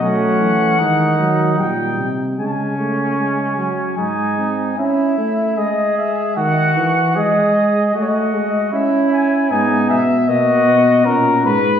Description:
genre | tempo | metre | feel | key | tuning
classical, imitative canzona for brass ensemble | 76 BPM | 3/4 | straight | C# minor | A4 = 440 Hz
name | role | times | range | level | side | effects
mellow trumpet | melody | 0.0-11.8 s | A#4 to A5 | -18 LUFS | left 3 dB | none
clear flugelhorn | second line | 0.0-11.5 s | C#4 to G#4 | -22 LUFS | right 3 dB | none
mellow euphonium | accompaniment | 0.0-11.6 s | D#3 to C#4 | -19 LUFS | right 2 dB | none
dark bass trombone | bass | 0.0-4.7, 9.5-11.8 s | G#2 to F#3 | -20 LUFS | right 1 dB | none
room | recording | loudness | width
wet recital hall reverb, RT60 1.5 s | recorded in a church or concert hall | -14 LUFS | side -8 dB against mid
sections
0.0-4.8 A section; 4.8-11.8 B section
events
none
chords
0.0 D#dim; 1.6 D#6/A#; 2.4 G#sus4/C#; 4.0 G#; 4.8 C#m; 6.4 D#m; 7.2 G#5; 8.7 C#m; 9.5 G#m; 11.1 G#m11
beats
| 0.02 0.80 1.59 | 2.38 3.18 3.98 | 4.78 5.58 6.37 | 7.17 7.95 8.73 | 9.51 10.29 11.06

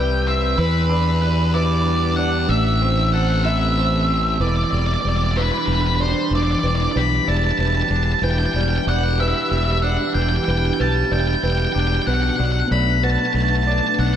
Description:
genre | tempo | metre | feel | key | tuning
rock | 63 BPM (dotted quarters) | 6/8 | straight | E minor | A4 = 439 Hz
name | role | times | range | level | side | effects
octave-fuzz lead guitar | melody | 0.0-14.2 s | B4 to B5 | -22 LUFS | equal | distortion, tape echo
warbly tape-like pad | sustained chords | 0.0-14.2 s | E3 to B4 | -26 LUFS | right 2 dB | chorus, built-in reverb, phaser
twangy electric guitar | arpeggios | 0.0-14.2 s | A2 to B4 | -27 LUFS | left 2 dB | phaser, tape echo
fuzz fingered electric bass | bass | 0.0-14.2 s | E1 to E2 | -20 LUFS | equal | overdrive
felt-muted upright piano | arpeggios | 0.6-14.2 s | B4 to E5 | -30 LUFS | right 3 dB | tape echo
room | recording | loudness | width
moderate plate reverb, RT60 3.6 s | dreamy mix soaked in reverb | -17 LUFS | side -9 dB against mid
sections
0.0-4.4 A section; 4.4-14.2 B section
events
none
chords
0.0 Cmaj7; 0.6 Em7; 2.5 Am; 4.4 Em7; 12.1 Bm7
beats
| 0.59 1.54 | 2.50 3.45 | 4.41 5.37 | 6.32 7.28 | 8.23 9.19 | 10.15 11.11 | 12.06 13.02 | 13.98

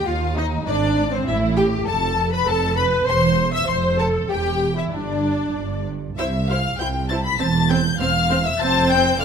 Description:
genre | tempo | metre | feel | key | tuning
quick classical-period movement for string orchestra | 99 BPM | 2/4 | straight | C major | A4 = 443 Hz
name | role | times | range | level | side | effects
rich studio violin section | melody | 0.0-9.2 s | C5 to B6 | -24 LUFS | left 5 dB | none
warm symphonic violin section | second line | 0.0-9.2 s | C4 to B5 | -25 LUFS | left 4 dB | none
warm studio viola section | accompaniment | 0.0-9.2 s | C4 to E5 | -23 LUFS | right 1 dB | none
dark studio double bass section | bass | 0.1-9.2 s | E1 to Eb2 | -25 LUFS | right 3 dB | none
warm studio cello section | bass | 0.1-9.2 s | C2 to A2 | -25 LUFS | right 4 dB | none
room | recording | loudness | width
light reverb | close, detailed microphones | -18 LUFS | side -7 dB against mid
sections
0.0-6.2 A section; 6.2-9.2 B section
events
none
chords
0.1 Ebsus2; 0.7 Ab; 1.3 A5; 1.9 F; 3.1 C/E; 3.7 F; 4.3 Em; 4.9 G5; 6.2 C; 7.4 C/E; 8.6 F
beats
| 0.07 0.67 | 1.28 1.88 | 2.48 3.08 | 3.69 4.30 | 4.93 5.56 | 6.18 6.79 | 7.39 7.99 | 8.59 9.20

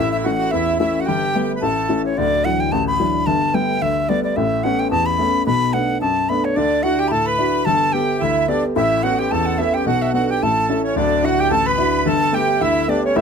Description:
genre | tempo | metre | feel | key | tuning
celtic folk, Celtic reel | 218 BPM | 4/4 | swing 56% on 8ths | unclear | A4 = 443 Hz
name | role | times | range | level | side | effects
wooden flute | melody | 0.0-13.2 s | C#5 to B5 | -20 LUFS | equal | none
accordion | second line | 0.0-2.0, 6.5-13.2 s | C#4 to B4 | -22 LUFS | right 4 dB | none
warm baby grand piano | accompaniment | 0.0-13.2 s | D1 to A4 | -19 LUFS | left 2 dB | none
room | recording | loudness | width
light reverb | close, detailed microphones | -16 LUFS | side -6 dB against mid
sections
0.0-2.2 A section; 2.2-11.0 B section; 11.0-13.2 B section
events
none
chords
0.0 A; 1.1 Gadd9; 1.6 A; 2.2 Dadd9; 3.3 Gadd9; 4.4 Aadd9; 5.5 Bm7; 6.6 Dadd9; 7.7 Gadd9; 8.8 Aadd9; 9.9 Bm7; 10.4 A; 11.0 Dadd9; 12.1 Gadd9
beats
0.25 0.52 0.80 | 1.07 1.35 1.62 1.90 | 2.17 2.44 2.72 2.99 | 3.27 3.54 3.82 4.09 | 4.37 4.64 4.91 5.19 | 5.46 5.74 6.01 6.29 | 6.56 6.84 7.11 7.39 | 7.66 7.94 8.21 8.49 | 8.76 9.04 9.31 9.59 | 9.86 10.14 10.41 10.69 | 10.96 11.24 11.51 11.79 | 12.06 12.34 12.61 12.88 | 13.16

